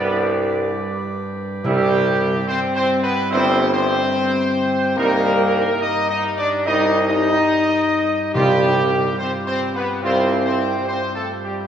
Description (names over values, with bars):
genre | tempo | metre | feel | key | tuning
classical | 72 BPM | 4/4 | straight | unclear | A4 = 440 Hz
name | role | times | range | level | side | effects
bright trumpet section | melody | 0.0-11.6 s | G4 to Eb5 | -22 LUFS | equal | none
clear trombone section | sustained chords | 0.0-10.4 s | G3 to F4 | -28 LUFS | right 2 dB | none
mellow French horn section | sustained chords | 0.0-11.7 s | G3 to Eb4 | -21 LUFS | left 2 dB | none
pipe organ, principal chorus | sustained chords | 0.0-11.7 s | G2 to B4 | -27 LUFS | right 2 dB | none
clear tuba | bass | 0.0-10.8 s | G1 to C2 | -23 LUFS | right 2 dB | none
timpani | percussion | 1.6-2.9, 8.4-9.6 s | C3 | -28 LUFS | right 1 dB | none
room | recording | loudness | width
wet church reverb, RT60 3.2 s | recorded in a church or concert hall | -16 LUFS | side -8 dB against mid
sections
0.0-11.7 A section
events
none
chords
0.0 G/C; 1.7 C; 5.0 Eb/C; 8.4 Fsus2/C